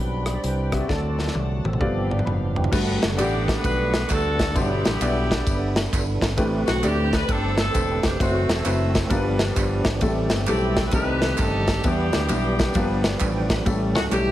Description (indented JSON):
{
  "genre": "uptempo gospel",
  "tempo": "132 BPM",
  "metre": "4/4",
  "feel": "swing 65% on 8ths",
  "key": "G major",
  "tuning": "A4 = 439 Hz",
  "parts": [
    { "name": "tonewheel organ", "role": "sustained chords", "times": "0.0-14.3 s", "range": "D3 to B5", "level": "-29 LUFS", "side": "right 3 dB", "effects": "slow rotary speaker, overdrive, chorus vibrato" },
    { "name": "warm studio string section", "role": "sustained chords", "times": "0.0-2.7 s", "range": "C4 to B5", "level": "-37 LUFS", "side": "left 3 dB", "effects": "none" },
    { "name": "modern bright fingered electric bass", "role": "bass", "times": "0.0-14.3 s", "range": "E1 to E2", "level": "-26 LUFS", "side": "equal", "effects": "none" },
    { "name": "modern studio drum kit", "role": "drums", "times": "0.3-14.3 s", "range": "crash cymbal, hi-hat, kick drum, ride cymbal, rim click, snare drum, toms", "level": "-25 LUFS", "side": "equal", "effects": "none" },
    { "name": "warm upright piano", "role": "accompaniment", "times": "0.7-14.3 s", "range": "G2 to C6", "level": "-26 LUFS", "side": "left 2 dB", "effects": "none" },
    { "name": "tambourine and handclaps", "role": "percussion", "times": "2.7-14.3 s", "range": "none", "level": "-36 LUFS", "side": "right 2 dB", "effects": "none" },
    { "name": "bright saxophone section", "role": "melody", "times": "3.2-14.3 s", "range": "A3 to B4", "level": "-27 LUFS", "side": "left 1 dB", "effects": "plate reverb" }
  ],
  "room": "light reverb",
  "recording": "heavily compressed radio sound",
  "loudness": "-20 LUFS",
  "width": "side -13 dB against mid",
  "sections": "0.0-2.7 A section; 2.7-14.3 B section",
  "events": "drum fill 0.9-2.7; tonewheel organ fill 12.8-13.7",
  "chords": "0.0 Am11 (rootless); 0.9 D7; 1.8 G7; 2.7 Gmaj9; 4.6 Cmaj9#11/G; 6.4 Am11; 8.2 F#m7b5; 9.1 G7; 10.0 Am7; 10.9 Cm6; 11.8 Em7; 12.8 G7; 13.7 A7"
}